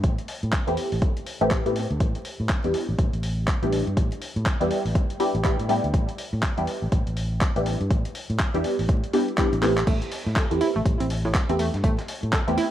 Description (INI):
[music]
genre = deep house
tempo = 122 BPM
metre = 4/4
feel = swing 60% on 16ths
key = A minor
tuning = A4 = 441 Hz
[part]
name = fingered electric bass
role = bass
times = 0.0-12.6 s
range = A1 to A2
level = -27 LUFS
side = equal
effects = sidechain pumping
[part]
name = dusty soul sampler-style drum kit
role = drums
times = 0.0-12.7 s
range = crash cymbal, handclaps, hi-hat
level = -31 LUFS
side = equal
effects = studio ambience
[part]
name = electronic kick drum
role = drums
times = 0.0-12.4 s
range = none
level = -24 LUFS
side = equal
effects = overdrive, studio ambience
[part]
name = filtered dub chord stab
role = stabs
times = 0.7-12.7 s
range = G3 to G4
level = -26 LUFS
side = equal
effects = phaser, ensemble chorus, sidechain pumping, analog delay
[part]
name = analog pluck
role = arpeggios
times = 9.9-12.7 s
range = A2 to A4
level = -28 LUFS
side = right 2 dB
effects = chorus, sidechain pumping, analog delay
[part]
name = breakbeat sampler-style drum kit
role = drums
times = 9.9-12.7 s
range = hi-hat, snare drum, tambourine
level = -40 LUFS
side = equal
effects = none
[sound]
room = light reverb, digital ambience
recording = vinyl crackle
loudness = -22 LUFS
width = side -12 dB against mid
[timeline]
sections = 0.0-12.7 A section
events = drum fill 9.6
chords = 0.0 Am9